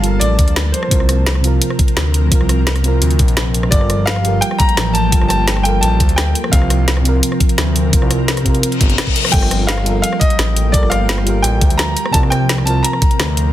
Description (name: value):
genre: liquid drum and bass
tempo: 171 BPM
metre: 4/4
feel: straight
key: G minor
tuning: A4 = 441 Hz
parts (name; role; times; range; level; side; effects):
- warm grand piano; melody; 0.0-1.4, 3.7-7.2, 9.3-13.5 s; C5 to Bb5; -20 LUFS; equal; tape echo
- mellow FM electric piano; accompaniment; 0.0-13.5 s; C3 to Bb4; -21 LUFS; right 2 dB; chorus
- ethereal airy pad; sustained chords; 0.0-13.5 s; F3 to A5; -23 LUFS; equal; ensemble chorus, built-in reverb, sidechain pumping
- smooth synth bass; bass; 0.0-13.5 s; G1 to D2; -16 LUFS; equal; none
- drum and bass drum kit; drums; 0.0-13.4 s; crash cymbal, hi-hat, rim click, snare drum; -20 LUFS; equal; overdrive, studio reverb
- electronic kick drum; drums; 0.4-13.1 s; none; -14 LUFS; equal; overdrive, studio reverb
- reverse cymbal; sound effects; 8.8-9.3 s; none; -19 LUFS; left 7 dB; none
room: little or no reverb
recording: dense, heavily limited modern master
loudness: -12 LUFS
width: side -13 dB against mid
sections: 0.0-13.5 A section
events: reverse cymbal 8.8-9.3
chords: 0.0 Gm9; 0.9 C7sus4; 3.7 Gm9; 6.5 C7sus4; 9.3 Gm9; 12.1 C7sus4